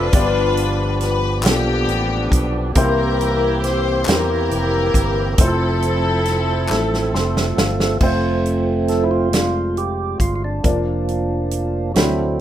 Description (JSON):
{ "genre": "slow gospel", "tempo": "46 BPM (dotted quarters)", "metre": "6/8", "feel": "straight", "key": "F major", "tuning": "A4 = 440 Hz", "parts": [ { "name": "warm studio string section", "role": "melody", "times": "0.0-7.6 s", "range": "B3 to C5", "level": "-21 LUFS", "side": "left 3 dB", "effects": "plate reverb" }, { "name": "dark baby grand piano", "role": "accompaniment", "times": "0.0-12.4 s", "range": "G2 to C6", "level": "-24 LUFS", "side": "left 2 dB", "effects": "plate reverb" }, { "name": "percussive tonewheel organ", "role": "sustained chords", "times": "0.0-12.4 s", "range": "E3 to A4", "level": "-22 LUFS", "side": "right 3 dB", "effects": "slow rotary speaker, plate reverb" }, { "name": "fingered electric bass", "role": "bass", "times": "0.0-12.4 s", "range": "F1 to E2", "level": "-22 LUFS", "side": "equal", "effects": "none" }, { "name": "natural country drum kit", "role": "drums", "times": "0.1-12.2 s", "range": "crash cymbal, hi-hat, kick drum, snare drum", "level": "-19 LUFS", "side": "equal", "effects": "none" }, { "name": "group handclap", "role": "percussion", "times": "1.4-7.1 s", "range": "none", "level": "-26 LUFS", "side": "left 4 dB", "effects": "none" }, { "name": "dark French horn section", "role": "sustained chords", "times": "8.0-12.4 s", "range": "F3 to F4", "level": "-35 LUFS", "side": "left 3 dB", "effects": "none" } ], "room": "moderate studio reverb, RT60 0.6 s", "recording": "rough home demo mix", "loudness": "-16 LUFS", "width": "side -11 dB against mid", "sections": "0.0-8.0 A section; 8.0-12.4 B section", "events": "drum fill 6.7-8.0; grand piano fill 6.7-8.0; tonewheel organ solo 8.0-12.4", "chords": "0.1 G7; 2.8 C7; 5.4 Fmaj7; 8.0 F; 10.6 Bb/F", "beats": "| 0.13 1.45 | 2.76 4.07 | 5.39 6.70 | 8.02 9.33 | 10.65 11.96" }